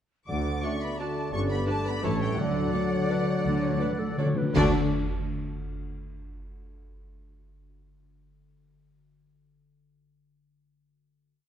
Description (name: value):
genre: classical, orchestral ballroom waltz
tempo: 155-189 BPM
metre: 3/4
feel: rubato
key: D major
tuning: A4 = 438 Hz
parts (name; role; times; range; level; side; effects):
- warm symphonic violin section; melody; 0.3-4.8 s; D5 to D6; -37 LUFS; left 2 dB; none
- clear oboe; second line; 0.3-4.7 s; C#5 to D5; -38 LUFS; equal; none
- large flute ensemble; second line; 0.3-4.8 s; B4 to A5; -38 LUFS; left 3 dB; none
- mellow clarinet; second line; 0.3-4.7 s; F#4 to D5; -37 LUFS; left 1 dB; none
- dark bassoon; accompaniment; 0.3-4.7 s; D3 to E3; -35 LUFS; right 2 dB; none
- warm French horn section; sustained chords; 0.3-4.7 s; F#3 to D4; -33 LUFS; left 2 dB; none
- concert harp; arpeggios; 0.3-5.7 s; G2 to F#5; -35 LUFS; left 7 dB; none
- mellow tuba; bass; 0.3-4.7 s; G1 to D2; -34 LUFS; right 3 dB; none
- rich symphonic cello section; bass; 0.3-4.8 s; D2 to D3; -35 LUFS; right 2 dB; none
- rich symphonic double bass section; bass; 0.3-4.8 s; G1 to D2; -36 LUFS; right 4 dB; none
- timpani; percussion; 0.3-4.7 s; D3; -32 LUFS; equal; none
- rich symphonic violin section; second line; 0.6-4.8 s; D4 to D5; -40 LUFS; left 1 dB; none
- rich symphonic viola section; accompaniment; 0.6-4.8 s; F#3 to G4; -37 LUFS; equal; none
- cymbal swell, clash cymbals and concert bass drum; percussion; 2.4-5.3 s; none; -35 LUFS; right 1 dB; none
room: wet recital hall reverb, RT60 1.6 s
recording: dark, warm production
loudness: -25 LUFS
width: side -9 dB against mid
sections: 0.3-4.6 A section; 4.6-5.7 final chord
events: timpani fill 2.4-4.6; band accent 4.6-4.9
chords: 0.3 D; 1.3 G; 2.0 A; 2.4 D